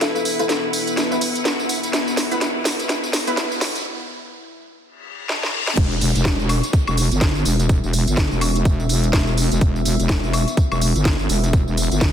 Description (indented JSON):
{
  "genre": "bass house",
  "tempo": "125 BPM",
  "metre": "4/4",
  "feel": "swing 59% on 16ths",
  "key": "E minor",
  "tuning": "A4 = 439 Hz",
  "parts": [
    { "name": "kalimba", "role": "melody", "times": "0.0-0.6 s", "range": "A4", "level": "-27 LUFS", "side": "left 5 dB", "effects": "digital delay" },
    { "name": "deep dark ambient pad", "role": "sustained chords", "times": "0.0-12.1 s", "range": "B3 to E5", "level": "-28 LUFS", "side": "left 2 dB", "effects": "chorus, built-in reverb, sidechain pumping" },
    { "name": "garage drum kit", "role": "drums", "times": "0.0-12.1 s", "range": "crash cymbal, hi-hat, snare drum, tambourine, woodblock", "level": "-22 LUFS", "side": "equal", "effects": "high-pass filter on hats, high-pass filter on snare, high-pass filter on perc, high-pass filter on cymbals, high-pass filter on room" },
    { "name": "riser, reverse cymbal and downlifter", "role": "sound effects", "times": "0.9-9.6 s", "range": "none", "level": "-32 LUFS", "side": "left 1 dB", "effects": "none" },
    { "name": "clear studio string section", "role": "texture", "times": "0.0-3.9 s", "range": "E4 to F#5", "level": "-29 LUFS", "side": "right 1 dB", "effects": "sidechain pumping" },
    { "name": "orchestra-hit-like synth stab", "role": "stabs", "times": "0.4-3.4 s", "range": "B3 to B4", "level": "-28 LUFS", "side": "right 1 dB", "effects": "built-in reverb, sidechain pumping, digital delay" },
    { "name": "wobble bass", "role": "bass", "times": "5.8-12.1 s", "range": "E1 to G1", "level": "-19 LUFS", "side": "equal", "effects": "chorus, overdrive, sidechain pumping" },
    { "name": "electronic kick drum", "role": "drums", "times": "5.8-12.1 s", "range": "none", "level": "-20 LUFS", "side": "equal", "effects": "none" }
  ],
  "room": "digital ambience",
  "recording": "dense, heavily limited modern master, high-pass filter",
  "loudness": "-17 LUFS",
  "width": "side -9 dB against mid",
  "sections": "0.0-5.8 A section; 5.8-12.1 B section",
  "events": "build-up 0.0-5.8; drum fill 0.0-3.9, 5.3-5.8; filter sweep on synth stab 0.0-5.8; filter sweep 0.0-5.8; break 3.9-5.8; reverse cymbal 5.0-5.8; drop 5.8-12.1",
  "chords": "0.0 E5",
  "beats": "| 0.01 0.49 0.97 1.45 | 1.93 2.41 2.89 3.37 | 3.85 4.33 4.81 5.29 | 5.77 6.25 6.73 7.21 | 7.69 8.17 8.65 9.13 | 9.61 10.09 10.57 11.05 | 11.53 12.01"
}